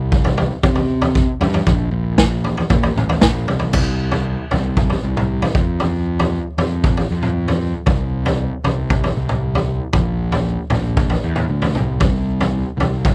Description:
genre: psychedelic rock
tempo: 116 BPM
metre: 4/4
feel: straight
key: C mixolydian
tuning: A4 = 435 Hz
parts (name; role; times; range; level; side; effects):
- fuzz picked electric bass; bass; 0.0-13.1 s; A1 to C3; -22 LUFS; equal; overdrive
- raw garage drum kit; drums; 0.1-13.1 s; crash cymbal, kick drum, snare drum, toms; -20 LUFS; equal; none
room: little or no reverb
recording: dry, close 1970s-style studio recording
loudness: -18 LUFS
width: mono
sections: 0.0-3.7 A section; 3.7-13.1 B section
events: none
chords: none

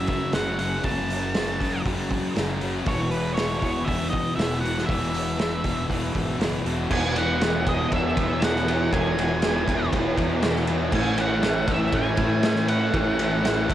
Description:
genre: rock, shoegaze and dream pop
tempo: 119 BPM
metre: 4/4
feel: straight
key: E major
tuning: A4 = 441 Hz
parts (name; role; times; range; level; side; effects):
- octave-fuzz lead guitar; melody; 0.0-13.7 s; B4 to A5; -29 LUFS; right 1 dB; distortion, tape echo
- distorted electric guitar; riff; 0.0-13.7 s; E2 to A3; -29 LUFS; right 1 dB; overdrive, cassette tape
- electric guitar through a small old amp; riff; 0.0-13.7 s; F#2 to A4; -32 LUFS; right 7 dB; reverse reverb, cassette tape
- thick fuzz guitar; riff; 0.0-13.7 s; E2 to A3; -29 LUFS; left 4 dB; distortion, ensemble chorus, cassette tape
- fuzz fingered electric bass; bass; 0.0-13.7 s; E1 to A2; -29 LUFS; equal; overdrive, transformer saturation
- loose indie drum kit; drums; 0.1-13.7 s; crash cymbal, hi-hat, kick drum, ride cymbal, snare drum; -26 LUFS; equal; cassette tape
room: light reverb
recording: home recording on cassette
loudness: -21 LUFS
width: side -12 dB against mid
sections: 0.0-6.9 A section; 6.9-13.7 B section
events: none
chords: 0.0 F#m7; 2.9 Emaj9; 10.9 Amaj7

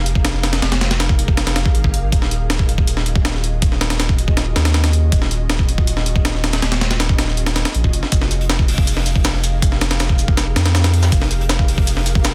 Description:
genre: drum and bass, jungle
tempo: 160 BPM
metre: 4/4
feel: straight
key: unclear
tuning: A4 = 438 Hz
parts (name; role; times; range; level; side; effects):
- saturated sub bass; bass; 0.0-12.3 s; Eb1 to F2; -21 LUFS; equal; tube saturation
- breakbeat sampler-style drum kit; drums; 0.1-12.3 s; hi-hat, kick drum, snare drum; -19 LUFS; equal; studio reverb
- crunchy breakbeat drum kit; drums; 8.1-12.3 s; hi-hat, shaker, snare drum; -30 LUFS; equal; high-pass filter on hats, studio reverb, high-pass filter on snare, high-pass filter on perc, high-pass filter on room
room: small room ambience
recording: dense, heavily limited modern master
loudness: -17 LUFS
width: mono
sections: 0.0-12.3 A section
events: none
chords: none

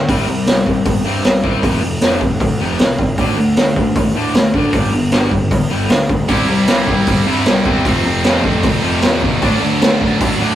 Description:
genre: punk rock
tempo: 154 BPM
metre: 4/4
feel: straight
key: unclear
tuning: A4 = 439 Hz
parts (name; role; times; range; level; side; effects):
- distorted electric guitar; riff; 0.0-10.6 s; F2 to D4; -20 LUFS; left 5 dB; distortion
- fuzz picked electric bass; bass; 0.0-10.6 s; F1 to A2; -21 LUFS; equal; overdrive
- raw garage guitar; riff; 0.1-10.6 s; F2 to D4; -22 LUFS; right 5 dB; overdrive
- raw garage drum kit; drums; 0.1-10.3 s; hi-hat, kick drum, snare drum; -15 LUFS; equal; none
- tight distorted guitar; riff; 6.3-10.6 s; F2 to E4; -17 LUFS; right 1 dB; distortion
room: light reverb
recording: rough rehearsal-room recording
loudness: -12 LUFS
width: side -12 dB against mid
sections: 0.0-10.6 A section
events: none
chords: 0.1 C5; 1.6 F5; 3.2 D5; 4.7 G5; 6.3 C; 7.9 F; 9.4 D

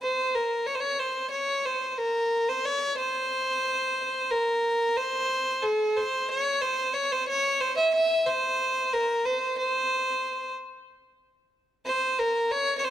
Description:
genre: turkish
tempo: free time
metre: none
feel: none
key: C makam hicaz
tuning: A4 = 440 Hz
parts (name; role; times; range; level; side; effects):
- bright violin; solo; 0.0-12.9 s; A4-40c to E5; -24 LUFS; equal; none
room: light reverb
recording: dark, warm production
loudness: -24 LUFS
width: side -11 dB against mid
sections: 0.0-12.9 A section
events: none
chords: none

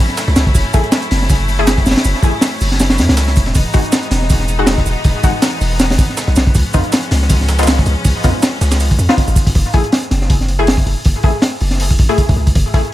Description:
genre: drum and bass, jungle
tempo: 160 BPM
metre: 4/4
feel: swing 55% on 16ths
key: F# dorian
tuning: A4 = 440 Hz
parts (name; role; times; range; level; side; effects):
- clear symphonic string section; sustained chords; 0.0-9.5 s; E3 to E4; -23 LUFS; left 2 dB; none
- long sustained 808-style bass; bass; 0.0-12.8 s; E1 to F#2; -15 LUFS; equal; none
- crunchy breakbeat drum kit; drums; 0.1-12.9 s; hi-hat, kick drum, snare drum; -14 LUFS; equal; none
- breakbeat sampler-style drum kit; drums; 0.2-9.5 s; hi-hat, shaker, snare drum; -23 LUFS; right 4 dB; high-pass filter on perc, high-pass filter on snare, high-pass filter on hats
- orchestra-hit-like synth stab; stabs; 0.7-12.8 s; G#3 to G#4; -21 LUFS; left 2 dB; built-in reverb, dub echo
room: studio ambience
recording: none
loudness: -11 LUFS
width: side -14 dB against mid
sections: 0.0-9.6 A section; 9.6-12.9 A section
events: drop 0.0-9.6, 9.6-12.9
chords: 0.0 F#m7; 3.5 Emaj7; 6.5 C#7; 9.6 F#m7

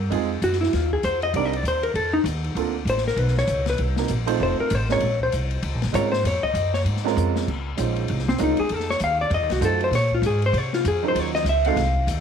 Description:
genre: jazz, small-group swing and bop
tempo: 196 BPM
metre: 4/4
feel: swing 61% on 8ths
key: Bb minor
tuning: A4 = 439 Hz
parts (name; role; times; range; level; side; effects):
- upright bass; bass; 0.0-12.2 s; F1 to C3; -24 LUFS; equal; none
- warm baby grand piano; accompaniment; 0.1-11.8 s; Gb3 to C5; -27 LUFS; right 12 dB; none
- open jazz drum kit; drums; 0.1-12.2 s; crash cymbal, hi-hat, kick drum, ride cymbal, snare drum; -32 LUFS; left 8 dB; none
- hollow-body jazz guitar; melody; 0.4-12.1 s; C4 to F5; -23 LUFS; left 2 dB; none
room: light reverb, small room ambience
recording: 1960s-style stereo with parts hard left and right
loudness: -20 LUFS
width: side -7 dB against mid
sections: 0.0-7.5 A section; 7.5-12.2 A section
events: hollow-body jazz guitar solo 0.0-12.2; drum fill 7.2-7.5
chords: 0.1 Fm7; 1.3 Cm7; 2.0 F7; 2.6 Bbmaj7; 3.2 Bsus2; 3.8 Cm7b5; 4.4 F7; 5.0 Bbm7; 7.5 Dbmaj9; 8.7 F7b9; 9.9 Bbm9; 11.2 Ebm9

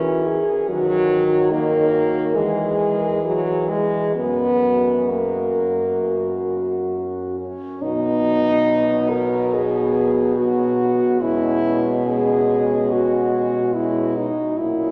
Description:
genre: classical, lyrical piece for horn quartet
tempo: 63-73 BPM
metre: 4/4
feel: rubato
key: B major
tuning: A4 = 437 Hz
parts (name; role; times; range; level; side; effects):
- mellow French horn; melody; 0.0-14.9 s; C#4 to C#5; -24 LUFS; equal; none
- mellow French horn; second line; 0.0-14.9 s; B3 to G#4; -28 LUFS; equal; none
- mellow French horn; accompaniment; 0.0-14.9 s; E3 to B3; -25 LUFS; equal; none
- mellow French horn; bass; 0.0-14.9 s; F#2 to E3; -26 LUFS; equal; none
room: wet cathedral reverb, RT60 4.7 s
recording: none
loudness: -20 LUFS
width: mono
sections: 0.0-7.8 A section; 7.8-14.9 B section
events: none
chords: 0.0 F#9/E; 0.7 B/D#; 2.4 E; 4.2 F#; 7.8 B; 11.2 C#m7/B

